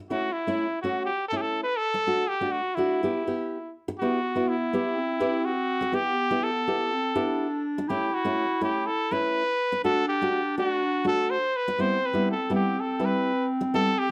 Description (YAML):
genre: klezmer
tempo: 123 BPM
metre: 4/4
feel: straight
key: E minor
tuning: A4 = 440 Hz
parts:
  - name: bright cornet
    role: melody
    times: 0.1-14.1 s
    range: E4 to C5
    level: -29 LUFS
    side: equal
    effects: plate reverb
  - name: nylon-string guitar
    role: accompaniment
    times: 0.1-13.9 s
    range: G3 to B4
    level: -30 LUFS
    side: equal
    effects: none
  - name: warm clarinet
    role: second line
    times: 4.0-14.1 s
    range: B3 to E4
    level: -33 LUFS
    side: equal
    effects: none
room: moderate studio reverb, RT60 0.6 s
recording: none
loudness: -26 LUFS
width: mono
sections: 0.0-4.0 A section; 4.0-14.1 A section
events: none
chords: 0.1 A; 2.0 D; 3.0 Em; 7.9 A; 9.8 D; 11.8 Em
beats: | 0.10 0.58 1.07 1.56 | 2.04 2.53 3.02 3.51 | 3.99 4.48 4.97 5.46 | 5.94 6.43 6.92 7.40 | 7.89 8.38 8.86 9.35 | 9.84 10.33 10.81 11.30 | 11.79 12.28 12.76 13.25 | 13.74